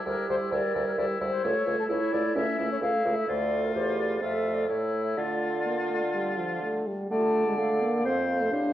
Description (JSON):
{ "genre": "quick classical-period movement for wind quintet", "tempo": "127 BPM", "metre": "4/4", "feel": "uneven beats", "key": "D minor", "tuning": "A4 = 442 Hz", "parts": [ { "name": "clear oboe", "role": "second line", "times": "0.0-8.7 s", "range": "E4 to D5", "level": "-34 LUFS", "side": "left 3 dB", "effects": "none" }, { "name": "mellow French horn", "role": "accompaniment", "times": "0.0-8.7 s", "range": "F3 to D4", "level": "-30 LUFS", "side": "equal", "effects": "none" }, { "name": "mellow clarinet", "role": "accompaniment", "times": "0.0-8.7 s", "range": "C#4 to Bb4", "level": "-33 LUFS", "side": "right 5 dB", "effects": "none" }, { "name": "mellow concert flute", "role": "melody", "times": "0.1-8.7 s", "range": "A4 to A5", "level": "-31 LUFS", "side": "left 4 dB", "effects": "none" }, { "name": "warm bassoon", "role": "bass", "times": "0.1-8.7 s", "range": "C#2 to D3", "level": "-31 LUFS", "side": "right 2 dB", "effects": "tube saturation" } ], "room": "wet recital hall reverb, RT60 1.5 s", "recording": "worn, warbling old tape, cassette tape, warbly pitch drift, nothing above 10.7 kHz", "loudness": "-25 LUFS", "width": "side -12 dB against mid", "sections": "0.0-7.1 A section; 7.1-8.7 A section", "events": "none", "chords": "0.0 Em7b5/D; 1.4 A/C#; 3.3 Dm; 4.2 Fmaj7; 4.7 A5; 5.2 Dm; 8.1 F", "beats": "0.06 0.52 0.98 | 1.44 1.90 2.35 2.82 | 3.28 3.75 4.21 4.69 | 5.17 5.66 6.15 6.63 | 7.11 7.59 8.06 8.52" }